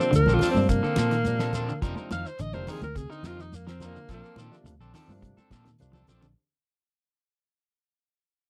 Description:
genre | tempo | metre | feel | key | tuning
afrobeat | 106 BPM | 4/4 | straight | unclear | A4 = 440 Hz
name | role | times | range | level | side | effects
edgy alto saxophone | melody | 0.0-4.4 s | Bb3 to F5 | -31 LUFS | equal | none
barky tine electric piano | accompaniment | 0.0-6.0 s | C3 to Eb4 | -39 LUFS | equal | overdrive, analog chorus
electric guitar at the edge of break-up | arpeggios | 0.0-6.3 s | C3 to F3 | -37 LUFS | equal | warbly pitch drift
electric guitar at the edge of break-up | stabs | 0.0-6.3 s | F3 to Bb4 | -38 LUFS | equal | none
shekere | percussion | 0.0-6.4 s | none | -40 LUFS | equal | none
fingered electric bass | bass | 0.1-6.3 s | F1 to Bb2 | -31 LUFS | equal | none
damped 70s drum kit | drums | 0.1-6.2 s | hi-hat, kick drum, snare drum | -33 LUFS | equal | none
congas | percussion | 0.3-6.4 s | none | -36 LUFS | equal | none
room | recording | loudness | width
light reverb | dry, close 1970s-style studio recording | -26 LUFS | mono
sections
0.0-6.4 A section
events
fade-out 0.0-6.4; alto saxophone solo 0.0-6.4; drum fill 5.2-6.4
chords
0.0 Bbmaj9; 1.8 F7sus4; 4.1 Bbmaj9

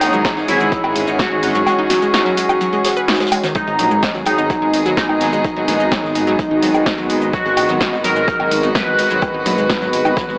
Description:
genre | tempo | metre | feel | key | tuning
melodic techno | 127 BPM | 4/4 | straight | G# minor | A4 = 440 Hz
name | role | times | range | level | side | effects
resonant sweep polysynth | melody | 0.0-10.4 s | D#4 to B4 | -17 LUFS | equal | chorus, sidechain pumping, analog delay
rich chamber string section | sustained chords | 0.0-10.4 s | D#3 to G#4 | -23 LUFS | equal | sidechain pumping
wide unison pluck | arpeggios | 0.0-10.4 s | D#3 to B4 | -22 LUFS | equal | sidechain pumping, analog delay
dark detuned saw bass | bass | 0.0-10.4 s | G#1 to A#1 | -24 LUFS | equal | sidechain pumping
punchy analog drum machine | drums | 0.0-10.3 s | hi-hat, shaker, snare drum, woodblock | -20 LUFS | equal | overdrive, sidechain pumping on perc, sidechain pumping on hats
vintage drum kit | drums | 0.0-10.4 s | hi-hat, snare drum | -28 LUFS | equal | high-pass filter on hats, high-pass filter on snare, high-pass filter on room
airy breathy pad | texture | 0.0-10.4 s | B3 to F#5 | -23 LUFS | equal | chorus, sidechain pumping
electronic kick drum | drums | 0.2-10.3 s | none | -24 LUFS | equal | overdrive
room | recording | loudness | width
light reverb | dry, gritty hardware recording, transformer saturation, AM radio sound | -13 LUFS | side -39 dB against mid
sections
0.0-10.4 A section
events
none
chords
0.0 E/G#; 3.6 G#m

